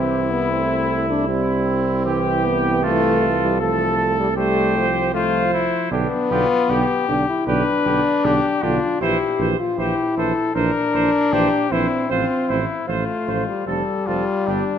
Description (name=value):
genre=classical, brass quintet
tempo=77 BPM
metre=4/4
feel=rubato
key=C major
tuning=A4 = 439 Hz
part: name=clear cornet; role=melody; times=0.0-14.8 s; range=D4 to B4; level=-23 LUFS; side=left 6 dB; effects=none
part: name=clear trumpet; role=second line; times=0.0-14.6 s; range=E4 to C5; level=-27 LUFS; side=right 8 dB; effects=none
part: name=mellow euphonium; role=accompaniment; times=0.0-14.6 s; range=D3 to A3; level=-26 LUFS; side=right 4 dB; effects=none
part: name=warm French horn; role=accompaniment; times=0.0-14.8 s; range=F3 to G4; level=-22 LUFS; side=left 3 dB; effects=none
part: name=mellow tuba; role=bass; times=0.0-14.6 s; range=F1 to C2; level=-25 LUFS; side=right 4 dB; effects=none
room=moderate concert hall reverb, RT60 2.0 s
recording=none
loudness=-17 LUFS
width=side -8 dB against mid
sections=0.0-14.8 A section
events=none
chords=0.0 C; 2.8 Fmaj9/C; 5.9 G/B; 9.0 C7/Bb; 12.1 F/A; 13.7 F